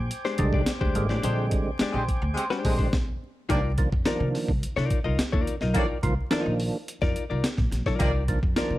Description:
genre	funk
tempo	106 BPM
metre	4/4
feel	straight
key	C minor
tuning	A4 = 440 Hz
part	mellow tonewheel organ	sustained chords	0.0-2.9 s	C5 to D6	-37 LUFS	equal	fast rotary speaker
part	upright bass	bass	0.0-8.8 s	Ab1 to C3	-28 LUFS	equal	none
part	breakbeat sampler-style drum kit	drums	0.1-8.7 s	hi-hat, kick drum, snare drum	-27 LUFS	equal	none
part	direct-recorded clean electric guitar	accompaniment	0.2-8.8 s	Ab3 to Eb5	-30 LUFS	left 5 dB	none
part	percussive tonewheel organ	stabs	0.4-8.8 s	D3 to F4	-30 LUFS	right 3 dB	chorus vibrato, slow rotary speaker
part	dark horn section	second line	1.9-8.1 s	Ab3 to D5	-32 LUFS	equal	none
room	digital ambience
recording	vinyl crackle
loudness	-23 LUFS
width	side -16 dB against mid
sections	0.0-3.5 A section; 3.5-8.8 B section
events	band accent 1.2-3.5; stop 2.9-3.5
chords	0.0 Bb13; 3.5 Cm11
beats	0.11 0.67 | 1.24 1.80 2.37 2.93 | 3.49 4.06 4.62 5.18 | 5.75 6.31 6.87 7.44 | 8.00 8.56

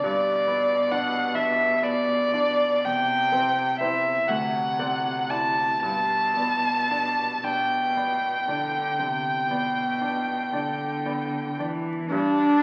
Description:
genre	classical, slow romantic movement for piano trio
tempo	37-46 BPM (dotted quarters)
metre	12/8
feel	rubato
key	G major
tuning	A4 = 439 Hz
part	rich violin	melody	0.0-11.6 s	D5 to A5	-26 LUFS	equal	none
part	clear cello	second line	0.0-12.6 s	B2 to D4	-32 LUFS	equal	none
part	bright baby grand piano	accompaniment	0.0-12.6 s	D2 to D5	-34 LUFS	equal	none
room	wet recital hall reverb, RT60 1.4 s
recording	very old 78 rpm record, vinyl crackle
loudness	-25 LUFS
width	mono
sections	0.0-12.1 A section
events	none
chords	0.0 G; 2.8 C/E; 4.3 D9; 5.8 G; 12.1 G5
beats	| 0.05 1.36 2.85 4.29 | 5.83 7.44 8.99 10.54 | 12.11

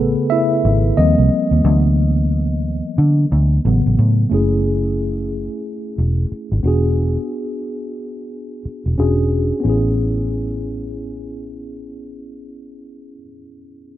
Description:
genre	R&B, neo-soul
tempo	90 BPM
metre	4/4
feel	swing 62% on 16ths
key	A major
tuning	A4 = 440 Hz
part	mellow tine electric piano	accompaniment	0.0-14.0 s	C#3 to E5	-20 LUFS	equal	medium stereo tremolo
part	vintage muted fingered electric bass	bass	0.0-13.2 s	E1 to D3	-16 LUFS	equal	none
room	light reverb, digital ambience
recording	rough home demo mix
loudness	-15 LUFS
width	side -13 dB against mid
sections	0.0-4.3 A section; 4.3-9.6 B section; 9.6-12.3 C section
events	tine electric piano solo 0.0-4.3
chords	0.0 Amaj9; 1.0 D#69; 1.6 D69; 3.6 A69; 4.3 F#m9; 6.6 E9; 9.0 E13; 9.6 Amaj9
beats	0.30 0.97 | 1.64 2.30 2.97 3.64 | 4.30 4.97 5.64 6.30 | 6.97 7.64 8.30 8.97 | 9.64 10.30 10.97 11.64

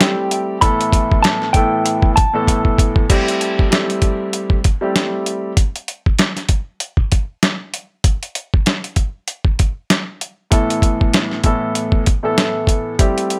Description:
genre	hip hop, boom-bap hip-hop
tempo	97 BPM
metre	4/4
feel	swing 56% on 16ths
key	A minor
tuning	A4 = 439 Hz
part	mellow electric guitar	melody	0.0-2.6 s	G5 to B5	-21 LUFS	equal	high-pass filter, low-pass filter, delay
part	dark baby grand piano	accompaniment	0.0-5.5, 10.5-13.4 s	A2 to A4	-21 LUFS	equal	cassette tape, high-pass filter, low-pass filter
part	dusty soul sampler-style drum kit	drums	0.0-13.4 s	crash cymbal, hi-hat, kick drum, snare drum	-18 LUFS	equal	none
room	light reverb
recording	none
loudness	-17 LUFS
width	mono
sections	0.0-3.1 A section; 3.1-13.4 B section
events	drum fill 2.5-3.1; break 5.6-10.5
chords	0.0 Am7; 0.6 Esus4/A; 3.1 Am7; 5.6 N.C.; 10.5 Esus4/A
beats	0.00 | 0.62 1.24 1.85 2.47 | 3.09 3.71 4.33 4.95 | 5.57 6.18 6.80 7.42 | 8.04 8.66 9.28 9.90 | 10.51 11.13 11.75 12.37 | 12.99

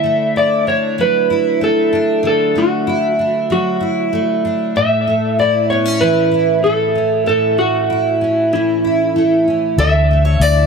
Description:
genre	pop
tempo	95 BPM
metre	4/4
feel	straight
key	A major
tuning	A4 = 440 Hz
part	electric slide guitar	melody	0.0-10.7 s	E4 to E5	-16 LUFS	right 1 dB	ping-pong delay
part	fingerpicked twelve-string acoustic guitar	accompaniment	0.0-10.7 s	A2 to E4	-16 LUFS	equal	double-tracked left and right
part	fingerpicked steel-string acoustic guitar	arpeggios	9.8-10.7 s	A4 to D5	-21 LUFS	equal	none
part	vintage muted fingered electric bass	bass	9.8-10.7 s	D2	-13 LUFS	left 2 dB	none
room	moderate studio ambience, RT60 0.5 s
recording	none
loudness	-13 LUFS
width	side -5 dB against mid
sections	0.0-10.7 A section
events	none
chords	0.0 Dadd9; 4.8 A; 9.8 Dsus2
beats	0.35 0.98 1.61 | 2.24 2.87 3.50 4.13 | 4.76 5.38 6.01 6.64 | 7.27 7.90 8.53 9.15 | 9.78 10.41

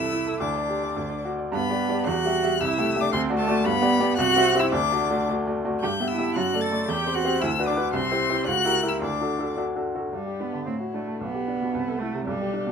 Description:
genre	quick classical-period movement for piano trio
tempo	112 BPM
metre	2/4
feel	rubato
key	G major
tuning	A4 = 441 Hz
part	rich violin	melody	0.0-12.7 s	D4 to A6	-28 LUFS	left 9 dB	none
part	rich cello	second line	0.0-12.7 s	G3 to A4	-27 LUFS	right 5 dB	none
part	bright baby grand piano	accompaniment	0.0-12.7 s	B1 to E5	-25 LUFS	equal	none
room	light reverb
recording	none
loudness	-22 LUFS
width	side -6 dB against mid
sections	0.0-1.5 A section; 1.5-10.1 B section; 10.1-12.7 C section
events	none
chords	0.4 G5/D; 1.0 D; 1.5 G; 2.1 Em; 2.6 Am7/C; 3.1 D7; 3.6 G; 4.2 C; 4.7 D; 5.8 Em/G; 6.3 D/F#; 6.9 C/E; 7.4 Bm/D; 7.9 C; 8.5 C#dim7; 9.0 D; 10.1 G; 10.7 D/A; 11.2 G/B; 11.7 Am/C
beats	| 0.41 0.97 | 1.53 2.07 | 2.60 3.12 | 3.65 4.18 | 4.72 5.27 | 5.81 6.35 | 6.88 7.41 | 7.93 8.46 | 9.01 9.57 | 10.13 10.67 | 11.21 11.73 | 12.26

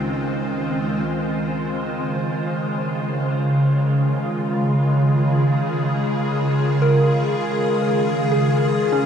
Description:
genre	ambient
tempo	free time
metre	none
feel	none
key	Db major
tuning	A4 = 440 Hz
part	evolving wavetable pad	sustained chords	0.0-9.1 s	Db2 to C5	-19 LUFS	equal	ensemble chorus, built-in reverb, cassette tape, shimmer reverb
part	soft synth bell	arpeggios	0.0-9.1 s	C4 to Bb4	-26 LUFS	right 2 dB	chorus, phaser, cassette tape, analog delay, shimmer reverb
part	analog drone	drone	0.0-9.1 s	Db3 to Ab3	-30 LUFS	right 1 dB	none
part	wind-like tuned noise texture	texture	3.7-9.1 s	F4 to F5	-32 LUFS	equal	built-in reverb, cassette tape, shimmer reverb
room	wet booth ambience, RT60 0.2 s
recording	home recording on cassette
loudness	-18 LUFS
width	side -8 dB against mid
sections	0.0-1.1 A section; 1.1-9.1 B section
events	fade-in on synth texture 1.1-9.1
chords	0.0 Dbmaj9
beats	free time

